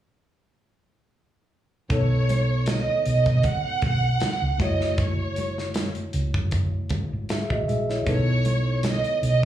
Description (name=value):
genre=lush 1970s-style soul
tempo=78 BPM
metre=4/4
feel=swing 54% on 16ths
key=unclear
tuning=A4 = 442 Hz
part: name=warm studio violin section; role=melody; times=1.9-9.4 s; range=C#5 to F#5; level=-26 LUFS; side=right 3 dB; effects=slapback echo
part: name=tine electric piano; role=accompaniment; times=1.9-9.4 s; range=A3 to E5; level=-30 LUFS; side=left 3 dB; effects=medium stereo tremolo, slapback echo
part: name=hollow-body short-scale fingered electric bass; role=bass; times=1.9-9.4 s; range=F#1 to B2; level=-24 LUFS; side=right 1 dB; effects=none
part: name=modern studio drum kit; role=drums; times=1.9-9.4 s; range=hi-hat, kick drum, snare drum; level=-28 LUFS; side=equal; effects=none
part: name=congas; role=percussion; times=1.9-9.0 s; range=none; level=-33 LUFS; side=right 4 dB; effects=none
room=moderate club reverb, RT60 0.6 s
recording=live gig heard through the venue's PA, club reverb, small room ambience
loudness=-21 LUFS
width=side -12 dB against mid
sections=1.9-9.4 A section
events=none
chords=1.9 B9; 4.6 F#m7; 8.1 B9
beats=| 1.90 2.67 3.44 4.21 | 4.99 5.76 6.53 7.30 | 8.07 8.84